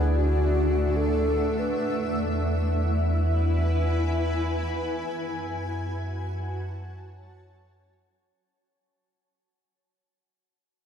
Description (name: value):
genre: ambient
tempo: free time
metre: none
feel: none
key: unclear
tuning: A4 = 440 Hz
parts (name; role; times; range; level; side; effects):
- granular cloud pad; sustained chords; 0.0-8.4 s; A3 to A5; -28 LUFS; equal; built-in reverb
- warm sub bass; bass; 0.0-8.3 s; D2 to F#2; -26 LUFS; equal; tube saturation
- hollow alto flute; melody; 0.2-2.2 s; F#4 to B4; -30 LUFS; left 1 dB; diffuse ambient delay
room: moderate cathedral reverb, RT60 6.3 s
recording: dark, warm production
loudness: -24 LUFS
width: side -8 dB against mid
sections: 0.0-8.4 A section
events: fade-out 4.0-8.4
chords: 0.0 D; 1.8 E7; 5.1 F#m9